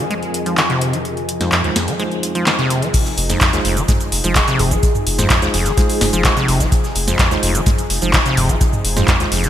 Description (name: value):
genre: acid house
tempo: 127 BPM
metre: 4/4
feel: straight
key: F minor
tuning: A4 = 440 Hz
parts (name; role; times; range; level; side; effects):
- warm analog pad; sustained chords; 0.0-9.5 s; F2 to Ab4; -26 LUFS; left 1 dB; chorus, tremolo, sidechain pumping
- acid bass, saw; riff; 0.0-9.5 s; Eb2 to Ab3; -21 LUFS; equal; overdrive, digital delay
- ethereal airy pad; texture; 0.0-2.9 s; F4 to Ab5; -30 LUFS; left 1 dB; ensemble chorus, built-in reverb, sidechain pumping
- booming analog drum machine; drums; 0.1-9.5 s; crash cymbal, handclaps, hi-hat, shaker, snare drum, toms; -18 LUFS; equal; gated reverb
- tine electric piano; stabs; 0.5-9.3 s; Ab3 to C5; -26 LUFS; right 3 dB; medium stereo tremolo, digital delay
- big rock drum kit; drums; 2.9-9.5 s; hi-hat, snare drum; -31 LUFS; right 2 dB; none
- electronic kick drum; drums; 2.9-9.2 s; none; -17 LUFS; equal; none
- saturated sub bass; bass; 3.2-9.5 s; F1; -22 LUFS; equal; sidechain pumping
- airy dreamy lead; melody; 4.6-6.2 s; Ab4; -26 LUFS; left 2 dB; chorus, digital delay
room: moderate lush hall reverb, RT60 1.8 s, digital ambience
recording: bright 1980s-style digital production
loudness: -14 LUFS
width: side -11 dB against mid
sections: 0.0-2.9 A section; 2.9-9.5 B section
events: drop 2.9-9.5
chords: 0.0 Fm7